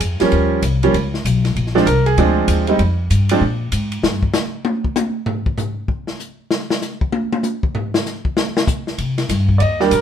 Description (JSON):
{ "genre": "jazz piano trio", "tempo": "194 BPM", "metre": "4/4", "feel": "swing 63% on 8ths", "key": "Bb mixolydian", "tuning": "A4 = 440 Hz", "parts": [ { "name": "upright bass", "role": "bass", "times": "0.0-4.2, 9.0-10.0 s", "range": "Bb1 to C3", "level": "-17 LUFS", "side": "left 1 dB", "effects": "none" }, { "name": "open jazz drum kit", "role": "drums", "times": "0.0-10.0 s", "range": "hi-hat, kick drum, ride cymbal, snare drum, toms", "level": "-21 LUFS", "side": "left 2 dB", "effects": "none" }, { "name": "bright grand piano", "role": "melody", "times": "0.2-3.4, 9.6-10.0 s", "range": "Eb3 to Eb5", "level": "-15 LUFS", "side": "right 3 dB", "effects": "none" } ], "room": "moderate studio reverb, RT60 0.7 s", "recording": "minimal, uncompressed stereo recording", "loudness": "-16 LUFS", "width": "side -9 dB against mid", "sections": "0.0-10.0 A section", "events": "grand piano solo 0.0-10.0; drum solo 4.0-9.0", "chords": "0.3 Eb9; 1.6 Bb9; 2.8 N.C.; 3.4 Absus2; 4.0 N.C.; 9.0 Cm7" }